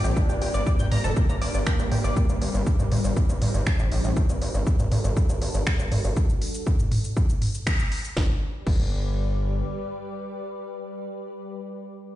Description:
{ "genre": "melodic techno", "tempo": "120 BPM", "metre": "4/4", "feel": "straight", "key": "unclear", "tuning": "A4 = 440 Hz", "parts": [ { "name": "evolving wavetable pad", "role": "sustained chords", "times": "0.0-11.5 s", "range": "G3 to D5", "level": "-34 LUFS", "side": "left 1 dB", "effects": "ensemble chorus, built-in reverb, tremolo, sidechain pumping" }, { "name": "tight sequenced synth", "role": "arpeggios", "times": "0.0-2.1 s", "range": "G4 to Bb6", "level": "-33 LUFS", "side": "equal", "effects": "chorus, sidechain pumping, dub echo" }, { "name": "gritty driven synth bass", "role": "bass", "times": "0.0-9.6 s", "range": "F1 to A1", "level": "-26 LUFS", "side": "equal", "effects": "sidechain pumping" }, { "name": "bowed-like drone", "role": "drone", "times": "0.0-4.2 s", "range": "G2 to G3", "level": "-39 LUFS", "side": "left 1 dB", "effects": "none" }, { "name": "techno drum kit", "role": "drums", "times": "0.0-8.8 s", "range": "crash cymbal, finger snaps, hi-hat, shaker, snare drum, toms", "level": "-29 LUFS", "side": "equal", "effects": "overdrive" }, { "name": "expressive portamento lead", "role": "melody", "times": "0.2-2.2 s", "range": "Bb3 to D4", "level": "-35 LUFS", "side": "right 1 dB", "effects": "chorus, sidechain pumping, dub echo" }, { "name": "electronic kick drum", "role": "drums", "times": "0.2-8.8 s", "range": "none", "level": "-23 LUFS", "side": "equal", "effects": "none" } ], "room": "light reverb, digital ambience", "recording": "played on a big sound system in a bare room, stone room reverb, nothing above 10.6 kHz", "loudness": "-22 LUFS", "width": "side -14 dB against mid", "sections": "0.0-8.2 A section; 8.2-12.2 B section", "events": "drop 0.0-8.2; band accent 7.7", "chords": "0.2 Gm; 2.2 Cm/G; 4.2 D/G; 6.2 N.C.; 8.2 G" }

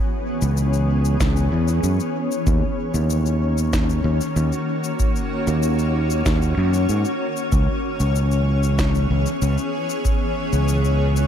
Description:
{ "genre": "ambient dub", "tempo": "95 BPM", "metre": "4/4", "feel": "straight", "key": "C# dorian", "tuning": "A4 = 439 Hz", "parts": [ { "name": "granular cloud pad", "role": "sustained chords", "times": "0.0-11.3 s", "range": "D#3 to C#5", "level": "-23 LUFS", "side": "left 1 dB", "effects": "built-in reverb" }, { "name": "overdriven fingered electric bass", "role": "bass", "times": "0.4-11.3 s", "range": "C#2 to G#2", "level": "-19 LUFS", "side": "equal", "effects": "tube saturation" }, { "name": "electronic shaker and snare drum", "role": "drums", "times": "0.4-11.3 s", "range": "none", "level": "-31 LUFS", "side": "left 2 dB", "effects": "overdrive, dub echo" }, { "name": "electronic kick drum", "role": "drums", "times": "1.2-10.2 s", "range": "none", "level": "-23 LUFS", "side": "equal", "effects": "none" } ], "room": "digital ambience", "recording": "none", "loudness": "-18 LUFS", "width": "side -9 dB against mid", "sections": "0.0-11.3 A section", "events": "none", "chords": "0.0 C#m7; 2.5 D#m7; 7.5 C#m7" }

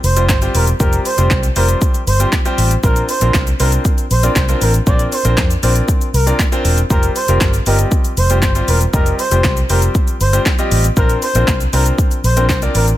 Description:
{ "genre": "dance-pop", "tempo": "118 BPM", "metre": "4/4", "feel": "straight", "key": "unclear", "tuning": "A4 = 439 Hz", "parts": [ { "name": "expressive portamento lead", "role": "melody", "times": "0.0-12.9 s", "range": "Bb4 to D5", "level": "-20 LUFS", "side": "equal", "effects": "chorus, digital delay" }, { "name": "vintage muted fingered electric bass", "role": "bass", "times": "0.0-12.9 s", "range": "E1 to F2", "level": "-15 LUFS", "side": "equal", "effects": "sidechain pumping" }, { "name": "house drum kit", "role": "drums", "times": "0.0-13.0 s", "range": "handclaps, hi-hat, kick drum, shaker, snare drum", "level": "-16 LUFS", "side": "equal", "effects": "overdrive" }, { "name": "bright concert grand piano", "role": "accompaniment", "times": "0.2-12.9 s", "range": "G3 to Eb5", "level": "-20 LUFS", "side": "left 1 dB", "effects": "sidechain pumping" } ], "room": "digital ambience", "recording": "none", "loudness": "-12 LUFS", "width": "side -14 dB against mid", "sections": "0.0-13.0 A section", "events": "none", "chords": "0.0 Fsus2; 2.8 Bbadd9; 6.9 Fsus2; 11.0 Bbadd9" }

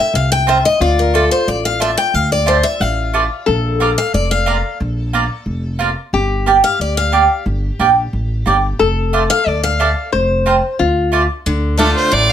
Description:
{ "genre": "bluegrass", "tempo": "180 BPM", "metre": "4/4", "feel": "straight", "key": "D minor", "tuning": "A4 = 440 Hz", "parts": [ { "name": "picked steel-string acoustic guitar", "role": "accompaniment", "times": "0.0-12.3 s", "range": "A2 to G5", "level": "-16 LUFS", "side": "left 3 dB", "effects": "none" }, { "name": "upright bass", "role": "bass", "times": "0.1-12.3 s", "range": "F1 to D2", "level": "-18 LUFS", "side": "equal", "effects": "none" }, { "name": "mandolin", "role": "stabs", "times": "0.5-11.9 s", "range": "A3 to Bb5", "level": "-14 LUFS", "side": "right 5 dB", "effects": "none" }, { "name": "lap resonator guitar", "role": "second line", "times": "0.8-11.3 s", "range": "F4 to C5", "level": "-19 LUFS", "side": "left 4 dB", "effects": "none" }, { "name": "clear fiddle", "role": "melody", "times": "11.8-12.3 s", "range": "A4 to D5", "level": "-13 LUFS", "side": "right 2 dB", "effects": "plate reverb" } ], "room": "moderate studio reverb, RT60 0.6 s", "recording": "none", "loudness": "-13 LUFS", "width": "side -10 dB against mid", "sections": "0.0-11.5 A section", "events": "steel-string acoustic guitar solo 0.0-11.5", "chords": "0.0 F5; 0.8 Dm; 3.5 Bb; 6.1 Gm; 8.8 Dm/F; 10.1 F; 10.8 Dm" }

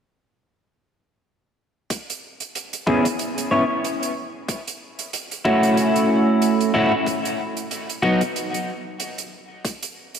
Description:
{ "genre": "glitch hop", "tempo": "93 BPM", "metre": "4/4", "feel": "swing 56% on 16ths", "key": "C# minor", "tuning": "A4 = 439 Hz", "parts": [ { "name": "electronic kick drum", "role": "drums", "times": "1.9-9.8 s", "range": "none", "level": "-29 LUFS", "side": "left 2 dB", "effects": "overdrive, high-pass filter on kick, high-pass filter on room" }, { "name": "hi-hat", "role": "drums", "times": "1.9-10.2 s", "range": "none", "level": "-31 LUFS", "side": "right 5 dB", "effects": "none" }, { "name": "electric guitar at the edge of break-up", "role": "stabs", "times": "2.9-8.2 s", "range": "F#3 to C#5", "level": "-19 LUFS", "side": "equal", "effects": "lush chorus, sidechain pumping, low-pass filter, diffuse ambient delay" } ], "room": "wet lush hall reverb, RT60 1.9 s", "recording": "dreamy mix soaked in reverb", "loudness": "-20 LUFS", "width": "side -7 dB against mid", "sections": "1.9-10.2 A section", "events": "none", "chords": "1.9 C#m7; 4.5 A6; 7.1 B; 9.6 N.C." }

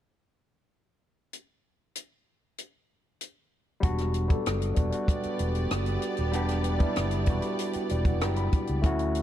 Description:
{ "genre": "lush 1970s-style soul", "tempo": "96 BPM", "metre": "4/4", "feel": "straight", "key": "E dorian", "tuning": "A4 = 440 Hz", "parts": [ { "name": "compact cocktail drum kit", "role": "drums", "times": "1.3-9.2 s", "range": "hi-hat, kick drum, rim click", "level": "-29 LUFS", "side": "equal", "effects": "none" }, { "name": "barky tine electric piano", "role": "accompaniment", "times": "3.8-9.2 s", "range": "G3 to B5", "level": "-30 LUFS", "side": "left 1 dB", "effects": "overdrive, phaser" }, { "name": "fingered electric bass", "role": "bass", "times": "3.8-9.2 s", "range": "D#1 to D2", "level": "-29 LUFS", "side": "equal", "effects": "none" }, { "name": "warm studio violin section", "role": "second line", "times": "5.1-8.8 s", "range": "B3 to D5", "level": "-35 LUFS", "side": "right 2 dB", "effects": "none" } ], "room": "light reverb, small room ambience", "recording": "dark, warm production", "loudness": "-25 LUFS", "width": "side -12 dB against mid", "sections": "1.3-3.8 A section; 3.8-9.2 B section", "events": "tine electric piano fill 7.6-8.8", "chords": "1.3 N.C.; 3.8 Em9" }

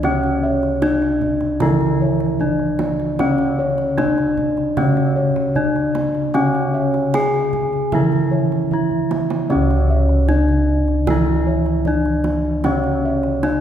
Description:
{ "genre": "Javanese gamelan", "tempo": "76 BPM", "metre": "4/4", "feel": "straight", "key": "unclear", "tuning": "A4 = 440 Hz", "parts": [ { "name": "gamelan-type bronze metallophone", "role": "melody", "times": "0.0-13.6 s", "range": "C#4 to G#4", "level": "-20 LUFS", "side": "left 1 dB", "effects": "none" }, { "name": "gamelan-type bronze metallophone", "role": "accompaniment", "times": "0.0-13.6 s", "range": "C#3 to E3", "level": "-23 LUFS", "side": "left 1 dB", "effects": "none" }, { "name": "gamelan-type bossed gongs", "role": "arpeggios", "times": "0.0-13.6 s", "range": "C#5 to G#5", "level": "-28 LUFS", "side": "left 4 dB", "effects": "none" }, { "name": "gamelan-type bossed gongs", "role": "bass", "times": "0.0-13.6 s", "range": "C#2 to D4+35c", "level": "-21 LUFS", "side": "right 1 dB", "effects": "none" }, { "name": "kendang", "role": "percussion", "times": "0.0-13.6 s", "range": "none", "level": "-28 LUFS", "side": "right 4 dB", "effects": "none" }, { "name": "gamelan-type bronze metallophone", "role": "arpeggios", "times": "0.1-13.6 s", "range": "C#5 to G#5", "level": "-27 LUFS", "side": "right 3 dB", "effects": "none" } ], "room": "wet concert hall reverb, RT60 2.3 s", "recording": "recorded in a church or concert hall", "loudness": "-16 LUFS", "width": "side -10 dB against mid", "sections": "0.0-13.6 A section", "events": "drum fill 8.9-9.5", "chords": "none" }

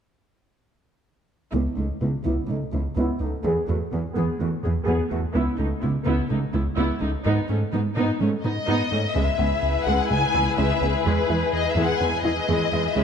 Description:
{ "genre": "cinematic", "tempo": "126 BPM", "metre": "4/4", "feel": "straight", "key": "C# minor", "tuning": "A4 = 440 Hz", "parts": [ { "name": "warm symphonic viola section", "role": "accompaniment", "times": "1.5-13.0 s", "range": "E3 to G#4", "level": "-26 LUFS", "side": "right 1 dB", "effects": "low-pass filter" }, { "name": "smooth gliding synth bass", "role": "riff", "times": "1.5-13.0 s", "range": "C#2 to G#3", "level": "-27 LUFS", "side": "right 1 dB", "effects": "low-pass filter" }, { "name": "warm studio cello section", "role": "bass", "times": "1.5-13.0 s", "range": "C#2 to G#2", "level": "-28 LUFS", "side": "right 2 dB", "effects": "none" }, { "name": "warm symphonic violin section", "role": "melody", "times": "8.5-13.0 s", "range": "B4 to G#5", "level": "-25 LUFS", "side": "left 6 dB", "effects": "low-pass filter" }, { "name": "warm symphonic violin section", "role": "second line", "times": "9.2-13.0 s", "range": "G#4 to B4", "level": "-27 LUFS", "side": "left 5 dB", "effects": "none" }, { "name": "analog pluck", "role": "arpeggios", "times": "9.2-13.0 s", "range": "C#3 to E4", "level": "-31 LUFS", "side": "equal", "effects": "chorus, low-pass filter, ping-pong delay" } ], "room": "moderate scoring stage reverb, RT60 2.0 s", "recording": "lossy compression artefacts", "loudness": "-21 LUFS", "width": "side -7 dB against mid", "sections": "1.5-9.2 A section; 9.2-13.0 B section", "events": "filter sweep 1.5-9.2", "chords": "1.5 C#m7; 3.4 E; 5.3 C#m7; 7.3 G#m; 9.2 C#m7; 11.1 E" }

